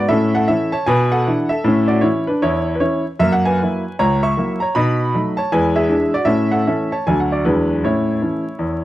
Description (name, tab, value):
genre	jazz, stride piano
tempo	156 BPM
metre	4/4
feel	swing 64% on 8ths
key	A major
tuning	A4 = 437 Hz
part	clear grand piano	solo	0.0-8.8 s	C#2 to C#6	-15 LUFS	equal	none
room	studio reverb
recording	dry, close 1970s-style studio recording, vinyl crackle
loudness	-15 LUFS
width	side -15 dB against mid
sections	0.0-8.8 A section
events	none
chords	0.1 A; 0.9 E5/B; 1.7 A; 3.2 F#7; 4.7 B7; 5.5 E7; 6.3 A; 7.1 D; 7.4 E9; 7.8 A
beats	| 0.11 0.50 0.88 1.27 | 1.66 2.04 2.43 2.81 | 3.20 3.58 3.97 4.35 | 4.74 5.12 5.51 5.89 | 6.28 6.67 7.05 7.44 | 7.82 8.21 8.59